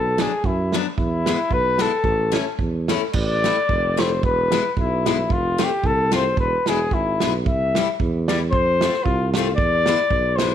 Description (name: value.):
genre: alpine folk, alpine dance band.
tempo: 112 BPM.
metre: 2/4.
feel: swing 54% on 8ths, rubato.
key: A major, A minor from 3.1 s.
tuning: A4 = 441 Hz.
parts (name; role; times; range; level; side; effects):
warm flugelhorn; melody; 0.0-10.5 s; E4 to E5; -21 LUFS; left 3 dB; none.
warm tuba; bass; 0.0-10.5 s; E1 to F#2; -24 LUFS; right 2 dB; none.
picked steel-string acoustic guitar; accompaniment; 0.2-10.5 s; F#3 to F4; -26 LUFS; left 11 dB; none.
natural country drum kit; drums; 0.2-10.5 s; crash cymbal, kick drum, snare drum; -24 LUFS; right 4 dB; none.
room: light reverb, studio reverb.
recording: 1960s-style stereo.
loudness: -18 LUFS.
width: side -9 dB against mid.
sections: 0.0-3.1 A section; 3.1-10.5 B section.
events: none.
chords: 0.0 Bm; 1.0 E; 2.0 A; 3.1 Am; 4.2 E; 5.3 F; 6.4 E; 7.5 C; 8.5 F; 9.6 E7.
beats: 0.45 | 0.98 1.51 | 2.04 2.59 | 3.14 3.69 | 4.23 4.76 | 5.29 5.82 | 6.36 6.90 | 7.45 7.99 | 8.53 9.06 | 9.59 10.11.